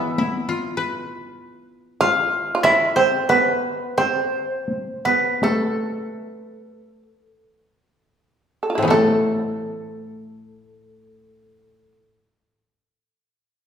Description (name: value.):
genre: japanese traditional, Japanese chamber music.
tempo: 32-51 BPM.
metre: 4/4.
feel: rubato.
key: A hirajoshi.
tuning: A4 = 441 Hz.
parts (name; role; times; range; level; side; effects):
koto; melody; 0.0-11.9 s; A4 to F5; -22 LUFS; left 1 dB; none.
shamisen; second line; 0.0-11.9 s; A3 to A4; -22 LUFS; right 2 dB; none.
koto; accompaniment; 0.0-12.2 s; A2 to B4; -25 LUFS; left 3 dB; none.
solo taiko drums; percussion; 0.2-9.8 s; none; -28 LUFS; left 1 dB; none.
room: wet recital hall reverb, RT60 1.6 s.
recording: recorded in a church or concert hall.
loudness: -18 LUFS.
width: side -8 dB against mid.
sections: 0.0-8.9 A section; 8.9-13.7 B section.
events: slowing down 0.0-8.9.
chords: none.